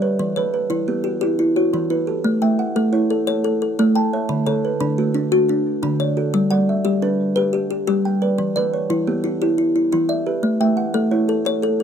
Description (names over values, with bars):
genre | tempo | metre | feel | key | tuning
southern african traditional | 117 BPM (dotted quarters) | 12/8 | straight | A mixolydian | A4 = 440 Hz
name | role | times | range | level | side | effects
kalimba | arpeggios | 0.0-11.8 s | D3 to G5 | -20 LUFS | left 3 dB | none
kalimba | arpeggios | 0.0-11.8 s | D3 to A5 | -20 LUFS | right 5 dB | tape echo
room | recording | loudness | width
moderate studio ambience, RT60 0.5 s | dry, close 1970s-style studio recording | -17 LUFS | side -8 dB against mid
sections
0.0-2.2 A section; 2.2-11.8 B section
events
none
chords
0.2 Em; 2.2 A; 4.3 D; 6.3 G; 8.4 Em; 10.4 A